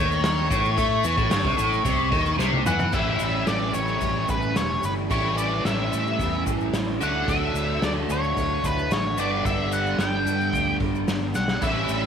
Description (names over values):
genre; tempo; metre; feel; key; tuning
psychedelic rock; 111 BPM; 4/4; straight; A mixolydian; A4 = 439 Hz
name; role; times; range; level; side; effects
octave-fuzz lead guitar; melody; 0.0-12.1 s; B4 to G5; -27 LUFS; left 1 dB; distortion, tape echo
phased string machine; sustained chords; 0.0-12.1 s; G3 to E5; -36 LUFS; right 13 dB; ensemble chorus, phaser
cranked stack guitar; riff; 0.0-12.1 s; G2 to E4; -25 LUFS; equal; overdrive, flanger
fingered electric bass; bass; 0.0-12.1 s; E1 to A2; -29 LUFS; equal; none
egg shaker; percussion; 0.1-12.0 s; none; -42 LUFS; left 15 dB; none
raw garage drum kit; drums; 0.2-12.0 s; crash cymbal, hi-hat, kick drum, snare drum, toms; -28 LUFS; equal; none
room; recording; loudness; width
studio reverb; 1960s-style stereo with parts hard left and right; -21 LUFS; side -7 dB against mid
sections
0.0-2.9 A section; 2.9-12.1 B section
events
drum fill 2.4-2.9, 11.3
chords
0.0 A; 2.9 A7; 7.0 Dadd9; 9.2 G